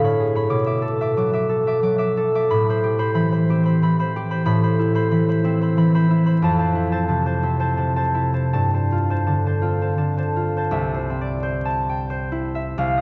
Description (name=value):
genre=classical, solo harp piece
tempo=78-94 BPM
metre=3/4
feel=rubato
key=C major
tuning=A4 = 439 Hz
part: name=concert harp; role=solo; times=0.0-13.0 s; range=C2 to D6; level=-20 LUFS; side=equal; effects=none
room=wet church reverb, RT60 2.7 s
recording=dark, warm production, vinyl crackle, nothing above 8.0 kHz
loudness=-21 LUFS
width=mono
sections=0.0-10.7 A section; 10.7-13.0 B section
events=none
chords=0.0 Amaj9; 0.5 Bm11; 2.5 Am9; 6.4 Fmaj7; 8.5 G9sus4; 10.7 C6